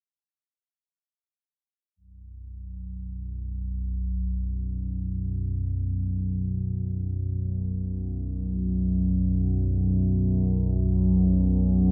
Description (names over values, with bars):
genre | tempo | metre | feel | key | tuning
ambient | free time | none | none | unclear | A4 = 440 Hz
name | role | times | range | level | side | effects
analog drone | solo | 2.3-11.9 s | B1 to F#2 | -27 LUFS | equal | chorus
room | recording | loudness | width
wet cathedral reverb, RT60 5.4 s | none | -27 LUFS | mono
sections
2.0-11.9 A section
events
none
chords
2.0 B5